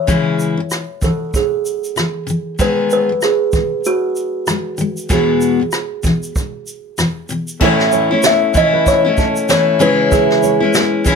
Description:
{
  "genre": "acoustic pop",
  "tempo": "96 BPM",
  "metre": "4/4",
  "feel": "swing 60% on 16ths",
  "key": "C# minor",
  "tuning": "A4 = 440 Hz",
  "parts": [
    { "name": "kalimba", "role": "melody", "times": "0.0-11.2 s", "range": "F#4 to E5", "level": "-17 LUFS", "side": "right 1 dB", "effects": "none" },
    { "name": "picked steel-string acoustic guitar", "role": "accompaniment", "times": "0.0-11.2 s", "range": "E2 to G#4", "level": "-16 LUFS", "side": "left 4 dB", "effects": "none" },
    { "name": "jazz brush drum kit", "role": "drums", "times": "0.1-11.2 s", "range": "crash cymbal, kick drum, rim click, shaker, snare drum", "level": "-19 LUFS", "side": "right 1 dB", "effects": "none" },
    { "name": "felt-muted upright piano", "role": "accompaniment", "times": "7.6-11.2 s", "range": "G#3 to C#5", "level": "-26 LUFS", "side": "equal", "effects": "none" },
    { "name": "nylon-string guitar", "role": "arpeggios", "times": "7.6-10.9 s", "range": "A4 to E5", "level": "-20 LUFS", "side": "right 9 dB", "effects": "none" }
  ],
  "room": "light reverb",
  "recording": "none",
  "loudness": "-13 LUFS",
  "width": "side -5 dB against mid",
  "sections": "0.0-7.6 A section; 7.6-11.2 B section",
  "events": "none",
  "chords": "0.0 C#m; 2.6 G#m/D#; 5.1 Eadd9; 7.6 A; 9.8 C#m"
}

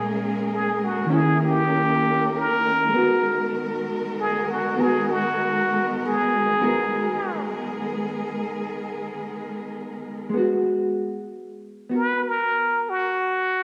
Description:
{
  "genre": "jazz ballad",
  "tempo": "65 BPM",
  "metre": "4/4",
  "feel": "swing 66% on 8ths",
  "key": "G# minor",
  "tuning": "A4 = 440 Hz",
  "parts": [
    { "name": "trumpet with plunger mute", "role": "melody", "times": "0.0-13.6 s", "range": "F#4 to B4", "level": "-25 LUFS", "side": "equal", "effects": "none" },
    { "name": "vintage hollow-body jazz guitar", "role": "accompaniment", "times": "0.0-13.6 s", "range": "A#2 to A#4", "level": "-28 LUFS", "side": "equal", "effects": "lush chorus" },
    { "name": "rich symphonic cello section", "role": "sustained chords", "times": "0.0-10.3 s", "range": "D#3 to A#4", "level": "-29 LUFS", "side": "equal", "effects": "none" }
  ],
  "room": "wet lush hall reverb, RT60 1.8 s, small room ambience",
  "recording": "dreamy mix soaked in reverb",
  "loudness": "-23 LUFS",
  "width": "mono",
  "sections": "0.0-10.3 A section; 10.3-13.6 B section",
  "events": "muted trumpet solo 0.0-10.3",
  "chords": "0.0 A#m7; 1.1 D#7b9; 2.9 G#m9; 10.3 G#m7"
}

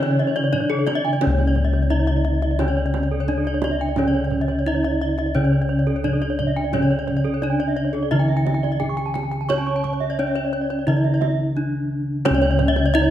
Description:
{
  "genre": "Balinese gamelan",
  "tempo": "87 BPM",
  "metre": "4/4",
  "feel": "straight",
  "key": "C# pelog",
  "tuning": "A4 = 440 Hz",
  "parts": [
    { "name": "gamelan-type bronze metallophone", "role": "melody", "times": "0.0-13.1 s", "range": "C#4 to C#5", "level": "-25 LUFS", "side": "equal", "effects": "none" },
    { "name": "breathy bright bass bansuri", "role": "second line", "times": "0.0-1.0 s", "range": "C#5", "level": "-34 LUFS", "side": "right 3 dB", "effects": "none" },
    { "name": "gamelan-type bronze metallophone", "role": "accompaniment", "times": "0.0-13.1 s", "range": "C#3 to C#4", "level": "-28 LUFS", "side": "equal", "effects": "none" },
    { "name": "gamelan-type bronze metallophone", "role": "arpeggios", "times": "0.0-13.0 s", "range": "A4-40c to C#6", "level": "-26 LUFS", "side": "left 3 dB", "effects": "none" },
    { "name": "gamelan-type bronze metallophone", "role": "arpeggios", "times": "0.0-13.1 s", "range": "A4-40c to C#6", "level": "-28 LUFS", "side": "right 6 dB", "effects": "none" },
    { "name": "gamelan-type bossed gongs", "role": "bass", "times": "0.0-13.1 s", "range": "C#2 to C#5", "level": "-22 LUFS", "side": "left 1 dB", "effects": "none" },
    { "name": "kendang", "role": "percussion", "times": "0.0-12.8 s", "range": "none", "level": "-32 LUFS", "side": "right 6 dB", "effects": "none" }
  ],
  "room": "moderate recital hall reverb, RT60 1.6 s",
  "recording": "none",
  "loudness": "-18 LUFS",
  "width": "side -11 dB against mid",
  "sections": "0.0-1.2 A section; 1.2-13.1 B section",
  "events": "break 11.2-12.2",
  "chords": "none"
}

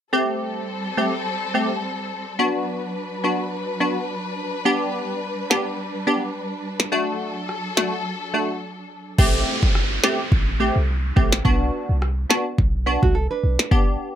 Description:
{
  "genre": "dancehall",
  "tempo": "106 BPM",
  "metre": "4/4",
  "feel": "swing 56% on 16ths",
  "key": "A dorian",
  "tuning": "A4 = 438 Hz",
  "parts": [
    { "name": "wavetable chord stab", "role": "accompaniment", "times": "0.1-14.2 s", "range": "A3 to G4", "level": "-22 LUFS", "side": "equal", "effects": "sidechain pumping" },
    { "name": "warm studio string section", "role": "sustained chords", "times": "0.1-9.2 s", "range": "F#3 to B4", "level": "-28 LUFS", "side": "left 1 dB", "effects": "sidechain pumping" },
    { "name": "minimal click drum kit", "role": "drums", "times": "5.5-13.9 s", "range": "crash cymbal, kick drum, rim click, snare drum", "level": "-20 LUFS", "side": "equal", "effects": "none" },
    { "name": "clean 808-style bass", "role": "bass", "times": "9.2-14.0 s", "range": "G1 to C2", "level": "-21 LUFS", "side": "equal", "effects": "none" },
    { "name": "downlifter", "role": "sound effects", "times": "9.2-13.7 s", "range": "none", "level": "-29 LUFS", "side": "right 1 dB", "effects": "none" },
    { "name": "nylon-string guitar", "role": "arpeggios", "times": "13.0-13.7 s", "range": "A3 to B4", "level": "-24 LUFS", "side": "right 6 dB", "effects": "none" }
  ],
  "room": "little or no reverb",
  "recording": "none",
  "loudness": "-20 LUFS",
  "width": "side -10 dB against mid",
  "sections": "0.1-9.2 A section; 9.2-14.2 B section",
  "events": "break 8.1-9.2",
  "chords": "0.1 Am7; 2.4 Bm; 4.7 G; 6.9 D; 9.2 Am7; 11.5 Bm"
}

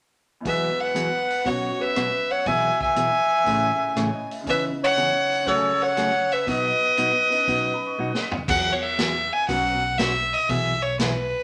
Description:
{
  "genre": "country, western swing",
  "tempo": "120 BPM",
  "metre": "4/4",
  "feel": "swing 69% on 8ths",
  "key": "E major",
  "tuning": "A4 = 443 Hz",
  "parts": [
    { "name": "bright upright piano", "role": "accompaniment", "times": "0.4-9.8 s", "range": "E2 to C#7", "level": "-36 LUFS", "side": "equal", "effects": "none" },
    { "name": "hollow-body jazz guitar", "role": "accompaniment", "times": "0.4-11.1 s", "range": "A2 to G#4", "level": "-31 LUFS", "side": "equal", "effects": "none" },
    { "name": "clear fiddle", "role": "melody", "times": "0.5-11.4 s", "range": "B4 to G#5", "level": "-25 LUFS", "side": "equal", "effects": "none" },
    { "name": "breathy clarinet", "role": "second line", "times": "0.5-8.3 s", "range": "F#4 to E5", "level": "-27 LUFS", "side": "equal", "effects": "none" },
    { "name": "vintage drum kit", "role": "drums", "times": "0.5-11.2 s", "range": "crash cymbal, hi-hat, kick drum, rim click, snare drum, toms", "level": "-33 LUFS", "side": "equal", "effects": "none" },
    { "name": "upright bass", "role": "bass", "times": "8.5-11.3 s", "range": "B1 to E2", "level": "-34 LUFS", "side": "equal", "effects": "none" }
  ],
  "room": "wet studio reverb, RT60 0.7 s",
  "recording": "none",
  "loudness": "-23 LUFS",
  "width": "mono",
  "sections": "0.5-8.5 A section; 8.5-11.4 B section",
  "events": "drum fill 8.0-8.5",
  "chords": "0.5 Eadd9; 1.5 Bsus2; 2.5 Eadd9/B; 3.5 Amaj7; 4.5 C#m7; 5.5 F#madd9/C#; 6.5 B; 8.5 Eadd9; 9.5 Bsus2; 10.5 Eadd9/B"
}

